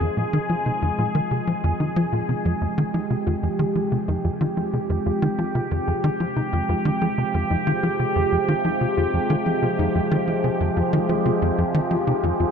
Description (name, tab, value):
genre	ambient, sequencer-driven space music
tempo	92 BPM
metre	4/4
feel	straight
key	F minor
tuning	A4 = 441 Hz
part	evolving wavetable pad	sustained chords	0.0-12.5 s	C3 to Ab4	-23 LUFS	equal	phaser, built-in reverb
part	tight sequencer bass	riff	0.0-12.5 s	F2 to F3	-24 LUFS	equal	analog chorus, analog delay
part	soft round pluck	arpeggios	0.2-12.5 s	Eb4 to Ab4	-33 LUFS	left 4 dB	chorus, auto-pan, analog delay
room	moderate huge ambient reverb, RT60 9.3 s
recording	dark, warm production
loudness	-20 LUFS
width	side -7 dB against mid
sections	0.0-12.5 A section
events	none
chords	0.0 Fm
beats	0.33 0.98 1.64 | 2.29 2.94 3.59 4.24 | 4.90 5.55 6.20 6.85 | 7.50 8.16 8.81 9.46 | 10.11 10.77 11.42 12.07